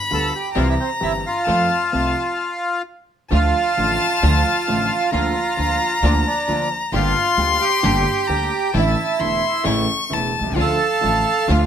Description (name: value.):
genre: tango.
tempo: 132 BPM.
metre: 4/4.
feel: rubato.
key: F major, D minor from 3.3 s.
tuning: A4 = 440 Hz.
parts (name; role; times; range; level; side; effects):
warm violin; second line; 0.0-11.7 s; F5 to C#6; -22 LUFS; left 4 dB; none.
bandoneon; melody; 0.1-11.7 s; C4 to A5; -20 LUFS; right 3 dB; none.
clear concert grand piano; accompaniment; 0.1-11.7 s; E1 to A4; -24 LUFS; equal; none.
rich studio string section; stabs; 0.1-11.7 s; G3 to G4; -28 LUFS; left 2 dB; none.
upright bass; bass; 0.1-11.7 s; E1 to F2; -22 LUFS; equal; none.
room: light reverb.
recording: close, detailed microphones.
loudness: -17 LUFS.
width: side -8 dB against mid.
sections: 0.0-3.3 A section; 3.3-11.7 B section.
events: stop 2.4-3.3.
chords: 0.0 G7; 0.6 C; 1.5 F; 3.3 Dm; 5.1 Bb/D; 6.9 Gm; 8.7 Asus4; 9.7 A; 10.6 Dm.